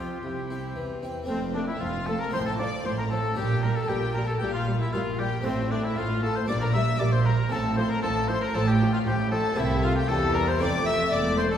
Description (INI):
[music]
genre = classical, baroque-style concerto movement with solo episodes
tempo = 116 BPM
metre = 4/4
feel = straight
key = F major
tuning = A4 = 440 Hz
[part]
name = clear oboe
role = melody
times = 0.0-11.6 s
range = C4 to E5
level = -32 LUFS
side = left 2 dB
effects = none
[part]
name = warm chamber violin section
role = melody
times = 0.0-11.6 s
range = C5 to E6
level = -34 LUFS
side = left 5 dB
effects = none
[part]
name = warm chamber violin section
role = second line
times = 0.0-11.6 s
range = C4 to E5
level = -32 LUFS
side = left 3 dB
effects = none
[part]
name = harpsichord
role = accompaniment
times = 0.0-11.6 s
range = E2 to G4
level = -35 LUFS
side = equal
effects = none
[part]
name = warm chamber viola section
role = accompaniment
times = 0.0-11.6 s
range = F3 to F4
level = -33 LUFS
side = equal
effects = none
[part]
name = rich chamber double bass section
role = bass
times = 0.0-11.6 s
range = E1 to F2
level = -30 LUFS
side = right 2 dB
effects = none
[part]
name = warm chamber cello section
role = bass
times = 0.0-11.6 s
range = E2 to F3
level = -29 LUFS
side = right 2 dB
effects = none
[sound]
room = wet scoring stage reverb, RT60 1.7 s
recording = heard from further back in the room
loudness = -23 LUFS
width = side -9 dB against mid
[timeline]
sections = 0.0-1.3 A section; 1.3-11.6 B section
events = none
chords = 0.2 C; 1.3 F; 2.3 F/A; 3.4 Gm/Bb; 5.4 F/A; 6.5 Gm/Bb; 7.5 F/A; 9.6 C7; 10.6 F